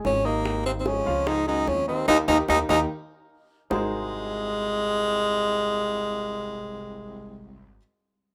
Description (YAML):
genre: Afro-Cuban jazz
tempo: 147 BPM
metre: 4/4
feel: straight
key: Ab mixolydian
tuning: A4 = 439 Hz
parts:
  - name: breathy baritone saxophone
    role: second line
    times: 0.0-7.7 s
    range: C2 to Ab2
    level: -35 LUFS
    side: equal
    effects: none
  - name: dark grand piano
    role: accompaniment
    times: 0.0-7.8 s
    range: Eb3 to Eb6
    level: -33 LUFS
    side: equal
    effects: none
  - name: upright bass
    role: bass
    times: 0.0-7.8 s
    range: Ab1 to Eb2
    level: -37 LUFS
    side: equal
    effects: none
  - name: bongos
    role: percussion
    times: 0.0-3.8 s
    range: none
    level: -35 LUFS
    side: equal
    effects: none
  - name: breathy tenor saxophone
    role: melody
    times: 0.1-7.7 s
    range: Ab3 to Eb4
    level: -27 LUFS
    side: equal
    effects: none
room: wet small room reverb, RT60 0.5 s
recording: rough home demo mix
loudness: -25 LUFS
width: mono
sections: 0.0-3.7 A section; 3.7-7.0 B section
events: band accent 2.1-3.7; drum fill 3.3-3.7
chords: 0.5 Ab5; 1.3 Dbadd9; 2.1 Eb; 3.7 Ab9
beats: 0.05 | 0.46 0.86 1.27 1.68 | 2.08 2.49 2.90 3.31 | 3.71 4.12 4.53 4.93 | 5.34 5.75 6.16 6.56